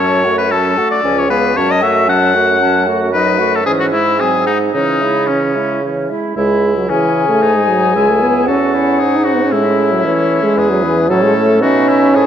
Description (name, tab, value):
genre	quick classical-period movement for wind quintet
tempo	114 BPM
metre	3/4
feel	straight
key	C# minor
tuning	A4 = 440 Hz
part	silver concert flute	melody	0.0-12.3 s	A4 to A5	-20 LUFS	left 7 dB	none
part	bright oboe	second line	0.0-12.3 s	C#4 to F#5	-16 LUFS	left 3 dB	none
part	clear clarinet	accompaniment	0.0-12.3 s	B3 to G#4	-21 LUFS	right 5 dB	none
part	warm French horn	accompaniment	0.0-12.3 s	E3 to D#4	-16 LUFS	right 1 dB	none
part	warm bassoon	bass	0.0-12.3 s	C#2 to A3	-18 LUFS	right 2 dB	none
room	moderate scoring stage reverb, RT60 1.9 s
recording	none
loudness	-11 LUFS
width	side -9 dB against mid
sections	0.0-6.4 A section; 6.4-12.3 A section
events	none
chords	0.0 F#m; 1.0 C#7; 1.6 F#m; 3.1 D#dim/F#; 3.7 C#m/G#; 4.2 G#7; 4.7 C#m; 7.4 G#5; 7.9 C#m; 9.5 A; 10.6 E; 11.1 A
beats	0.51 1.03 | 1.56 2.08 2.60 | 3.13 3.66 4.19 | 4.74 5.28 5.83 | 6.37 6.89 7.42 | 7.95 8.47 8.99 | 9.52 10.04 10.57 | 11.10 11.62 12.15